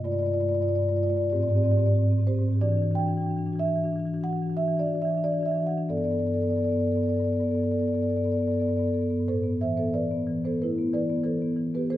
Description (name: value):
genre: classical, contemporary piece for solo marimba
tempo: 88-96 BPM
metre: 5/4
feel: rubato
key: A minor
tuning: A4 = 439 Hz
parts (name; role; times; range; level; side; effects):
- marimba with soft mallets; solo; 0.0-12.0 s; G2 to G5; -23 LUFS; equal; none
room: wet recital hall reverb, RT60 1.3 s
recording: recorded in a church or concert hall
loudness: -23 LUFS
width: side -13 dB against mid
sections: 0.0-9.3 A section; 9.3-12.0 B section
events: none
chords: 0.0 Gsus2; 1.3 Abmaj7; 2.6 Em9; 5.9 Gadd9; 9.3 Amadd9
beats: 0.06 0.70 1.33 1.97 | 2.61 3.27 3.91 4.57 5.22 | 5.89 6.58 7.26 7.94 8.61 | 9.29 9.95 10.61 11.26 11.91